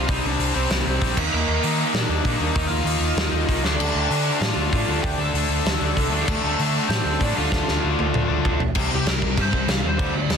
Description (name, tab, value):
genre	punk rock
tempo	194 BPM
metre	4/4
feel	straight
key	unclear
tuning	A4 = 440 Hz
part	lead guitar through a small cranked amp	melody	0.0-10.4 s	A3 to A5	-28 LUFS	left 1 dB	overdrive
part	raw garage guitar	riff	0.0-10.4 s	G2 to Eb4	-28 LUFS	right 14 dB	overdrive
part	tight distorted guitar	riff	0.0-10.4 s	G2 to Eb4	-26 LUFS	left 14 dB	distortion
part	overdriven picked electric bass	bass	0.0-10.4 s	Bb1 to Eb3	-25 LUFS	equal	none
part	big rock drum kit	drums	0.1-10.4 s	crash cymbal, hi-hat, kick drum, snare drum, toms	-24 LUFS	equal	none
room	light reverb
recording	dense, heavily limited modern master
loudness	-19 LUFS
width	side -6 dB against mid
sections	0.0-8.8 A section; 8.8-10.4 B section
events	half time 0.0-8.8; drum fill 3.6, 7.5-8.8; lead electric guitar solo 8.8-10.4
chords	0.0 Cm; 1.2 Eb5; 3.6 Dm; 8.8 C5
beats	| 0.09 0.40 0.71 1.02 | 1.32 1.63 1.94 2.25 | 2.56 2.87 3.18 3.49 | 3.80 4.11 4.42 4.73 | 5.04 5.34 5.65 5.96 | 6.27 6.58 6.89 7.20 | 7.51 7.82 8.13 8.44 | 8.75 9.06 9.37 9.69 | 10.00 10.31